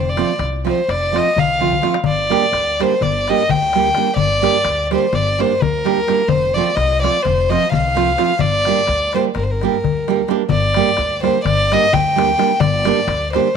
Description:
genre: balkan folk, Balkan wedding band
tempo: 256 BPM (eighths)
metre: 9/8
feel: straight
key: G minor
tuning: A4 = 440 Hz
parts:
  - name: warm violin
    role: melody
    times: 0.0-13.6 s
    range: Bb4 to G5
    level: -17 LUFS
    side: left 1 dB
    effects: none
  - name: upright bass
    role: bass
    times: 0.0-13.4 s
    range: F1 to D2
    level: -23 LUFS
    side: left 2 dB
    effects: tube saturation
  - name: darbuka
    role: percussion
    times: 0.0-13.5 s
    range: none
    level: -22 LUFS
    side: left 10 dB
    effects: none
  - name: nylon-string guitar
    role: accompaniment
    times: 0.2-13.5 s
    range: F3 to G4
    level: -20 LUFS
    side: right 13 dB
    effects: none
room: light reverb, small room reverb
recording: 1960s-style stereo with parts hard left and right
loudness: -14 LUFS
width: side -6 dB against mid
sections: 0.0-10.5 A section; 10.5-13.6 A section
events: drum fill 1.4-2.0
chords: 0.0 F; 2.0 Gm; 6.3 F; 8.4 Gm

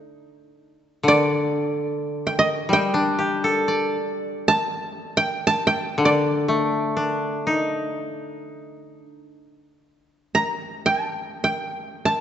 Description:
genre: japanese traditional, Japanese chamber music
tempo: free time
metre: none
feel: none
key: D miyako bushi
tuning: A4 = 441 Hz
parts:
  - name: koto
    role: accompaniment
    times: 0.0-9.5 s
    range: D3 to D5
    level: -22 LUFS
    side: left 1 dB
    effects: none
  - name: koto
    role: melody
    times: 1.1-12.2 s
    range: D5 to Bb5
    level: -21 LUFS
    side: right 2 dB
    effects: none
room: wet church reverb, RT60 2.7 s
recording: nothing above 7.9 kHz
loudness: -20 LUFS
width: side -9 dB against mid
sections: 0.0-12.2 A section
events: none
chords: none

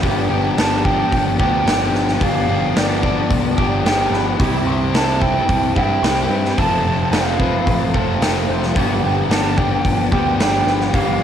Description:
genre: rock, shoegaze and dream pop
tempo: 110 BPM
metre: 4/4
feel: straight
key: G mixolydian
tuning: A4 = 442 Hz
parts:
  - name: electric guitar through a small old amp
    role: arpeggios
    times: 0.0-11.2 s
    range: G4 to C5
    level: -28 LUFS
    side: right 1 dB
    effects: lush chorus, cassette tape, tape echo
  - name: crunchy overdriven guitar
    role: riff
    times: 0.0-11.2 s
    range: F2 to G4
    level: -23 LUFS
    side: right 10 dB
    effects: reverse reverb, cassette tape
  - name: raw garage guitar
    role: riff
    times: 0.0-11.2 s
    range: F2 to G4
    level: -21 LUFS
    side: left 9 dB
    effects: overdrive, wide subtle chorus, cassette tape
  - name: growling picked electric bass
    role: bass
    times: 0.0-11.2 s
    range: F1 to G2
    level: -23 LUFS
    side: equal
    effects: overdrive
  - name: huge arena drum kit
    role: drums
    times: 0.0-11.1 s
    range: hi-hat, kick drum, snare drum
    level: -20 LUFS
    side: equal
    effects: cassette tape
  - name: mellow hollow silver concert flute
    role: melody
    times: 0.6-11.2 s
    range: D5 to A5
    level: -22 LUFS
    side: right 2 dB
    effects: cassette tape, tape echo
room: small room ambience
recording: home recording on cassette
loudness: -15 LUFS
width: side -9 dB against mid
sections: 0.0-11.2 A section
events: none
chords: 0.0 G7; 4.4 Cmaj7; 6.6 F; 8.8 G7

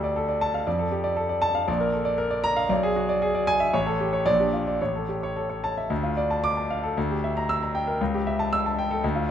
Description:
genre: classical, virtuoso piano study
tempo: 116 BPM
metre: 2/4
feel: rubato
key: unclear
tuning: A4 = 440 Hz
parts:
  - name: warm grand piano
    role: solo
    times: 0.0-9.3 s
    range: A1 to E6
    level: -22 LUFS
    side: equal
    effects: none
room: moderate recital hall reverb, RT60 1.5 s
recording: minimal, uncompressed stereo recording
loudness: -22 LUFS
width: side -9 dB against mid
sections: 0.0-5.9 A section; 5.9-9.3 B section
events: none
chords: 0.0 Dm; 0.7 Dm/F; 1.7 Bb; 2.7 E7/B; 3.7 A; 4.3 Gm/Bb; 4.8 A; 5.9 Dm; 7.0 Em7b5/D; 8.0 A7/C#

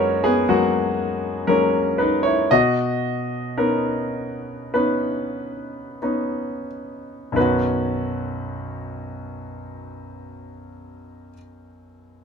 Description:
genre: classical, lyrical solo piano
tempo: 45-63 BPM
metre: 4/4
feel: rubato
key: B major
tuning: A4 = 440 Hz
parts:
  - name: clear grand piano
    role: solo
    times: 0.0-12.2 s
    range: B1 to D#5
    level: -20 LUFS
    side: left 1 dB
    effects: none
room: little or no reverb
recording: close, detailed microphones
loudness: -19 LUFS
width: side -6 dB against mid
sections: 0.0-7.4 A section; 7.4-12.2 B section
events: slowing down 0.0-7.4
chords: 0.0 F#add9; 2.5 Badd9

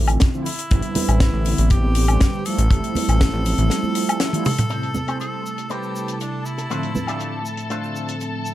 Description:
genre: nu-disco, nu disco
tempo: 120 BPM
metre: 4/4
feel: straight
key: A minor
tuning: A4 = 441 Hz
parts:
  - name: mellow synth brass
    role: accompaniment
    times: 0.0-8.5 s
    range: A2 to E5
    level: -26 LUFS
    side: right 2 dB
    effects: chorus, sidechain pumping, slapback echo
  - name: fat analog bass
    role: bass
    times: 0.0-3.7 s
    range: A1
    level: -18 LUFS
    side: equal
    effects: none
  - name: tight funk drum kit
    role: drums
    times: 0.1-8.5 s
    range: hi-hat, shaker, snare drum, toms, woodblock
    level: -25 LUFS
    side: left 2 dB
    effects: low-pass filter on hats, low-pass filter on toms, low-pass filter on snare, low-pass filter on perc, low-pass filter on room
  - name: egg shaker and congas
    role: percussion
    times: 0.1-8.5 s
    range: none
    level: -30 LUFS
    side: right 3 dB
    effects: none
  - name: kick drum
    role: drums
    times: 0.2-3.3 s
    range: none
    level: -18 LUFS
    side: equal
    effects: none
  - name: breathy tenor saxophone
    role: melody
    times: 0.5-7.5 s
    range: D4 to A4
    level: -29 LUFS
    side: left 1 dB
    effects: analog delay
  - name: rich studio string section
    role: sustained chords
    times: 4.7-8.5 s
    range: A4 to A5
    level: -32 LUFS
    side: left 2 dB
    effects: sidechain pumping, low-pass filter
  - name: electric guitar with an envelope filter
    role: riff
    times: 4.7-8.1 s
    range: A3 to C5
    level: -31 LUFS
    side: left 2 dB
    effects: wide subtle chorus, low-pass filter, slapback echo
room: small room reverb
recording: none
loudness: -18 LUFS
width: side -14 dB against mid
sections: 0.0-4.7 A section; 4.7-8.5 B section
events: drum fill 4.3-4.7; filter sweep on clean electric guitar 4.7-8.5; filter sweep on string section 4.7-8.5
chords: 0.0 Dm7/A; 0.7 Cmaj7/A; 2.5 Fmaj9/A; 4.7 Am7; 6.7 Dm7/A

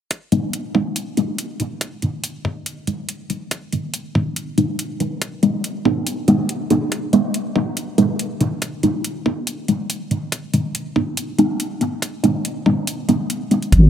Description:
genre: deep dubstep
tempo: 141 BPM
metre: 4/4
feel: half-time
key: G# minor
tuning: A4 = 440 Hz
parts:
  - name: electronic hi-hat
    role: drums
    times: 0.1-13.8 s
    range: none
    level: -26 LUFS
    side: equal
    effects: none
  - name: electronic kick drum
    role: drums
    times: 0.1-13.8 s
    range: none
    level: -21 LUFS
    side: equal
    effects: high-pass filter on kick, high-pass filter on room
  - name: filtered dub chord stab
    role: stabs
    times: 0.3-13.6 s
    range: G#3 to D#4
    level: -19 LUFS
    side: equal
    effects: phaser, analog chorus, dub echo
  - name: deep soft wobble bass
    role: bass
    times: 13.7-13.9 s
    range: G#1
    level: -9 LUFS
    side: equal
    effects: chorus, tube saturation
room: wet lush hall reverb, RT60 1.8 s, digital ambience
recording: bright 1980s-style digital production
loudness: -19 LUFS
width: side -9 dB against mid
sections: 0.1-13.7 A section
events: kick drops out 13.3-13.7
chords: 0.1 G#m

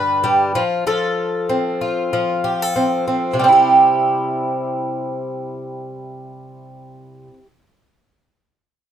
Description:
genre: pop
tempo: 95 BPM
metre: 4/4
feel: swing 55% on 16ths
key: C major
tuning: A4 = 440 Hz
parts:
  - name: fingerpicked twelve-string acoustic guitar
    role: accompaniment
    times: 0.0-7.5 s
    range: G2 to B4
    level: -16 LUFS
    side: right 1 dB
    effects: none
room: moderate small room reverb, RT60 0.5 s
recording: none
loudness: -15 LUFS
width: side -9 dB against mid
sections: 0.0-3.4 A section; 3.4-5.9 B section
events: none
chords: 0.0 G; 0.5 F; 3.4 C

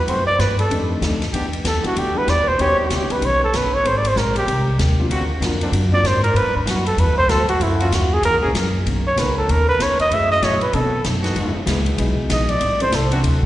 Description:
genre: jazz, big band swing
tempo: 192 BPM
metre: 4/4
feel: swing 61% on 8ths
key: B major from 8.9 s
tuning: A4 = 440 Hz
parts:
  - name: breathy trumpet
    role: melody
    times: 0.0-13.3 s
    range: D4 to E5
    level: -19 LUFS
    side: right 1 dB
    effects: slapback echo
  - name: upright bass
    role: bass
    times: 0.0-13.5 s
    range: G1 to B2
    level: -20 LUFS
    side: equal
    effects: none
  - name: vintage hollow-body jazz guitar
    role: accompaniment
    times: 0.1-13.5 s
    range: F2 to Bb4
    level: -27 LUFS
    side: left 3 dB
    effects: slapback echo
  - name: brilliant trombone section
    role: sustained chords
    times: 0.1-13.2 s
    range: C3 to A#4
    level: -28 LUFS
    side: equal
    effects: none
  - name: swinging big-band drum kit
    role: drums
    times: 0.1-13.5 s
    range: hi-hat, kick drum, ride cymbal, snare drum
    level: -27 LUFS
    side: equal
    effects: none
  - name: warm concert grand piano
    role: accompaniment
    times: 0.7-6.0, 10.1-13.2 s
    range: F#3 to A4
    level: -27 LUFS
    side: left 1 dB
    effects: slapback echo
room: moderate lush hall reverb, RT60 1.9 s, small room ambience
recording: live gig heard through the venue's PA, recital hall reverb, nothing above 10.8 kHz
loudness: -16 LUFS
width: side -14 dB against mid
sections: 0.0-8.9 A section; 8.9-13.5 A section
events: trumpet solo 0.0-13.5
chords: 0.1 F#m7b5; 0.7 F13; 1.3 Em7; 2.6 Eb7alt; 3.9 Abmaj9; 5.1 D7alt; 6.4 Gmaj13; 7.6 F#7; 8.9 Bmaj9; 10.1 F#m7; 10.7 B7b9; 11.4 Emaj7; 12.6 Am7

